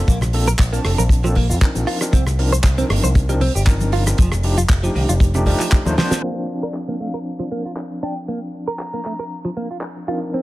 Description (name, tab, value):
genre	nu-disco, nu disco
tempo	117 BPM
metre	4/4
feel	swing 53% on 16ths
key	Bb major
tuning	A4 = 442 Hz
part	overdriven tine electric piano	accompaniment	0.0-10.4 s	F3 to A5	-25 LUFS	equal	fast tremolo
part	direct-recorded clean electric guitar	riff	0.1-10.4 s	C3 to C5	-25 LUFS	right 2 dB	analog chorus, low-pass filter
part	picked electric bass with an envelope filter	bass	0.1-5.9 s	F1 to F2	-18 LUFS	equal	none
part	damped 70s drum kit	drums	0.1-9.9 s	crash cymbal, handclaps, hi-hat, rim click, shaker, snare drum	-25 LUFS	right 1 dB	studio reverb
part	kick drum	drums	0.1-5.8 s	none	-16 LUFS	equal	studio reverb
part	congas and bongos	percussion	0.1-6.2 s	none	-28 LUFS	left 3 dB	none
part	mellow hollow jazz flute	melody	6.6-9.4 s	D5 to Bb5	-34 LUFS	left 1 dB	tape echo
room	small room ambience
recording	low-pass filter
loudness	-16 LUFS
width	side -17 dB against mid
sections	0.0-6.2 A section; 6.2-10.4 B section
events	drum fill 6.0; band accent 6.1; filter sweep on clean electric guitar 6.2-10.4; filter sweep 6.2-10.4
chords	0.0 Bbmaj9; 1.9 Cm11; 4.2 F13; 6.2 Bbadd9